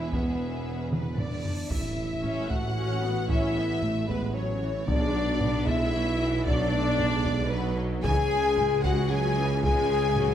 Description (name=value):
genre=cinematic, epic orchestral film score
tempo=114 BPM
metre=3/4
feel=straight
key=unclear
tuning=A4 = 440 Hz
part: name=rich symphonic violin section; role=melody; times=0.0-10.3 s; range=B4 to G#5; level=-37 LUFS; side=left 4 dB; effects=none
part: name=rich symphonic violin section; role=second line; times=0.0-10.3 s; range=G#4 to G#5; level=-35 LUFS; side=left 2 dB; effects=none
part: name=rich symphonic viola section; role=accompaniment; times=0.0-10.3 s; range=E3 to C#4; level=-35 LUFS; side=right 1 dB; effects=none
part: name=mellow French horn section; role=sustained chords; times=0.0-10.3 s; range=B3 to G#4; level=-29 LUFS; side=left 4 dB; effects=none
part: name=mellow tuba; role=bass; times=0.0-10.3 s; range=E1 to C#2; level=-34 LUFS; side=right 3 dB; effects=none
part: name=rich symphonic cello section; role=bass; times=0.0-10.3 s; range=E2 to C#3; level=-34 LUFS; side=right 2 dB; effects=none
part: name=rich symphonic double bass section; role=bass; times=0.0-10.3 s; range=E1 to C#2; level=-33 LUFS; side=right 3 dB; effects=none
part: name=taiko ensemble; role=drums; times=0.1-10.3 s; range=none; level=-31 LUFS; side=equal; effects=none
part: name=cymbal swell and impact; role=sound effects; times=1.3-3.3 s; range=none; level=-41 LUFS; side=equal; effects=none
part: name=mellow hollow concert flute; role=second line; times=0.9-10.3 s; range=B4 to G#5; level=-36 LUFS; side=left 1 dB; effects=none
part: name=timpani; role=percussion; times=4.9-5.6 s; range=B2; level=-38 LUFS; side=right 1 dB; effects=none
room=moderate scoring stage reverb, RT60 1.5 s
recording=none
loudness=-24 LUFS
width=side -10 dB against mid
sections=0.0-1.7 A section; 1.7-10.3 B section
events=drum fill 0.9-1.7; cymbal swell 1.3-1.7; impact 1.7-3.3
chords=0.0 E; 1.7 A; 4.9 Bm; 8.0 C#m